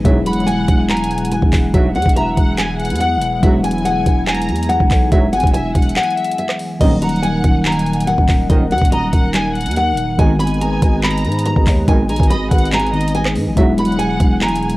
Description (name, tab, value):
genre	hip hop, trap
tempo	142 BPM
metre	4/4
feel	half-time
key	unclear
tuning	A4 = 440 Hz
part	mellow tine electric piano	accompaniment	0.0-14.8 s	Eb3 to E4	-21 LUFS	left 1 dB	fast stereo tremolo
part	dark analog pad	sustained chords	0.0-14.8 s	Eb3 to G#5	-26 LUFS	right 1 dB	chorus
part	mellow brass ensemble	stabs	0.0-13.7 s	Bb1 to F#3	-24 LUFS	right 2 dB	tape echo
part	growling 808-style bass	bass	0.0-14.8 s	Eb1 to Ab2	-20 LUFS	equal	none
part	trap drum kit	drums	0.0-14.8 s	crash cymbal, handclaps, hi-hat, kick drum, rim click	-16 LUFS	equal	cassette tape
part	nylon-string guitar	melody	0.1-14.8 s	Eb5 to B5	-20 LUFS	left 1 dB	tape echo
part	warm studio violin section	second line	0.3-14.8 s	Eb5 to Bb5	-26 LUFS	equal	tape echo
room	light reverb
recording	home recording on cassette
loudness	-13 LUFS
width	side -18 dB against mid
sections	0.0-6.8 A section; 6.8-14.8 A section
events	break 6.0-6.8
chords	0.0 Eadd9; 6.8 Ebm; 10.2 Abm; 13.6 Eadd9